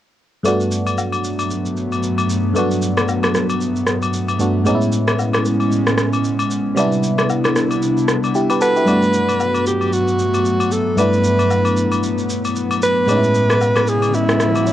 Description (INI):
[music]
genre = amapiano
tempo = 114 BPM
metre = 4/4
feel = swing 58% on 16ths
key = G major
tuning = A4 = 437 Hz
[part]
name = barking FM electric piano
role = accompaniment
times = 0.4-14.7 s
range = G2 to B4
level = -20 LUFS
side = right 1 dB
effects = chorus, phaser, cassette tape
[part]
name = airy breathy pad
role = sustained chords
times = 0.8-14.7 s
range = G2 to E4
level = -20 LUFS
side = left 1 dB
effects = chorus, cassette tape
[part]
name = electronic shaker and rim click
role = drums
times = 0.5-14.7 s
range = none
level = -23 LUFS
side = equal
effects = cassette tape
[part]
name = agogo bells and woodblock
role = percussion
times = 0.5-14.7 s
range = none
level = -26 LUFS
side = left 5 dB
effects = none
[part]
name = breathy alto saxophone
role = melody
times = 8.6-14.7 s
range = E4 to B4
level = -18 LUFS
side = right 1 dB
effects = analog delay
[part]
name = riser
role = sound effects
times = 14.0-14.7 s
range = none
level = -28 LUFS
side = right 1 dB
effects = none
[sound]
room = light reverb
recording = home recording on cassette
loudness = -15 LUFS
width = side -12 dB against mid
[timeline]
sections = 0.5-8.9 A section; 8.9-14.7 B section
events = none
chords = 0.5 Gmaj9; 4.7 Amaj9; 6.8 Cmaj9; 8.9 Gmaj9; 13.1 Amaj9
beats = | 0.45 0.98 1.50 2.03 | 2.56 3.08 3.61 4.14 | 4.66 5.19 5.71 6.24 | 6.77 7.29 7.82 8.35 | 8.87 9.40 9.93 10.45 | 10.98 11.51 12.03 12.56 | 13.08 13.61 14.14 14.66